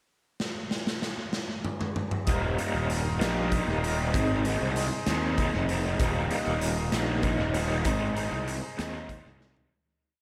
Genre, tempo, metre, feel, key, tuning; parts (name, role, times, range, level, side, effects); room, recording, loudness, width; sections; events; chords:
psychedelic rock; 64 BPM (dotted quarters); 6/8; straight; Eb major; A4 = 444 Hz
raw garage drum kit; drums; 0.4-9.7 s; hi-hat, kick drum, snare drum, toms; -34 LUFS; equal; tape echo
hand-pumped harmonium; sustained chords; 2.3-9.7 s; Eb4 to Eb5; -39 LUFS; equal
raw garage guitar; riff; 2.3-9.7 s; Eb3 to Eb4; -32 LUFS; equal; overdrive, rotary speaker, tape echo
fuzz picked electric bass; bass; 2.3-9.7 s; Eb1 to Eb2; -33 LUFS; equal; overdrive
light reverb, small room ambience; echo-heavy mix; -28 LUFS; mono
0.4-2.3 pickup bar; 2.3-9.7 groove
drum fill 0.4-2.3, 9.4-9.7; fade-out 7.9-9.7
0.4 N.C.; 2.3 Ebadd9; 4.1 Ab; 6.0 Ebadd9; 7.9 Ab